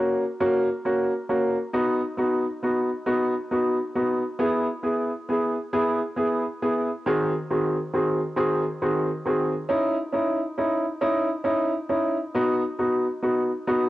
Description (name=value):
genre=pop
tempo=45 BPM (dotted quarters)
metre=6/8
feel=straight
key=E major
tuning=A4 = 440 Hz
part: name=clear upright piano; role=solo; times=0.0-13.9 s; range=D#3 to G#4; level=-22 LUFS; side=equal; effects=cassette tape
room=moderate spring reverb, RT60 2.6 s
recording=home recording on cassette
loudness=-22 LUFS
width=side -16 dB against mid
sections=0.0-13.9 A section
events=none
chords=0.0 F#; 1.7 B; 4.4 E; 7.0 G#7/D#; 9.7 C#madd9; 12.4 B